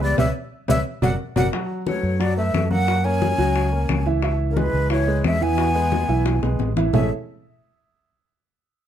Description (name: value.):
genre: Afro-Cuban jazz.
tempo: 178 BPM.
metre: 4/4.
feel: straight.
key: A major.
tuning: A4 = 440 Hz.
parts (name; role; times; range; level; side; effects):
breathy jazz flute; melody; 0.0-7.1 s; Bb4 to G#5; -25 LUFS; equal; plate reverb.
breathy tenor saxophone; second line; 0.0-7.1 s; C#3 to C#4; -29 LUFS; left 7 dB; none.
warm baby grand piano; accompaniment; 0.0-7.1 s; E3 to B5; -26 LUFS; right 3 dB; none.
fingered electric bass; bass; 0.0-7.1 s; F#1 to F#2; -22 LUFS; equal; none.
bongos; percussion; 0.2-7.0 s; none; -28 LUFS; left 8 dB; none.
congas; percussion; 0.2-7.0 s; none; -26 LUFS; equal; none.
room: light reverb.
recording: dark, warm production.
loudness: -18 LUFS.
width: side -10 dB against mid.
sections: 0.0-1.5 A section; 1.5-6.9 B section; 6.9-8.3 C section.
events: drum fill 0.2-1.5, 6.3-6.9; band accent 0.2-1.5.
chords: 0.2 C#m7b5; 0.9 F#aug; 1.5 B5; 2.9 F#9; 4.2 C#m7; 5.6 E; 6.9 Amaj7.